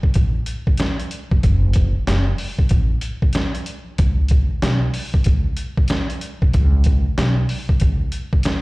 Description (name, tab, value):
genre	hip hop, boom-bap hip-hop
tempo	94 BPM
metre	4/4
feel	swing 61% on 16ths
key	F# minor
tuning	A4 = 440 Hz
part	trip hop sampler-style drum kit	drums	0.0-8.6 s	hi-hat, kick drum, snare drum	-18 LUFS	equal	none
part	upright bass	bass	0.2-8.1 s	E#1 to C#2	-19 LUFS	equal	none
room	little or no reverb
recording	played on a big sound system in a bare room, large studio reverb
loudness	-16 LUFS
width	side -23 dB against mid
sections	0.0-8.6 A section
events	none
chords	none